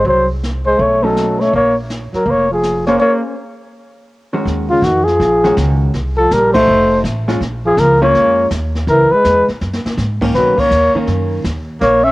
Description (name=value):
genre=jazz, small-group swing and bop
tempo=163 BPM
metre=4/4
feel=swing 64% on 8ths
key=Bb minor, Eb minor from 4.5 s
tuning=A4 = 441 Hz
part: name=warm flugelhorn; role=melody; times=0.0-12.1 s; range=F4 to Fb5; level=-13 LUFS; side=left 1 dB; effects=none
part: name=breathy tenor saxophone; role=second line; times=0.0-12.1 s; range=Db3 to Db4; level=-19 LUFS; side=right 1 dB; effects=cassette tape
part: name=upright bass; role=bass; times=0.0-12.1 s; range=F1 to B2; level=-19 LUFS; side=equal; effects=tube saturation
part: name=jazz brush drum kit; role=drums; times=0.1-12.1 s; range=brushed snare drum, crash cymbal, hi-hat, kick drum, snare drum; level=-26 LUFS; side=equal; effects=cassette tape
part: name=vintage hollow-body jazz guitar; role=accompaniment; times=1.0-11.4 s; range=Eb3 to C5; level=-19 LUFS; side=equal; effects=cassette tape
room=light reverb, studio ambience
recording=home recording on cassette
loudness=-11 LUFS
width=side -19 dB against mid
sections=0.0-4.5 A section; 4.5-12.1 B section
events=break 3.0-4.5; band accent 6.5, 10.5; drum fill 9.6-10.0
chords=0.1 Ab7/C (rootless); 0.8 B9; 1.5 Bbm9; 4.5 Ebm11; 5.9 Cm7; 6.7 F7b9; 7.4 Bbm7; 8.9 Dbm7; 9.6 Gb69; 10.3 Bmaj9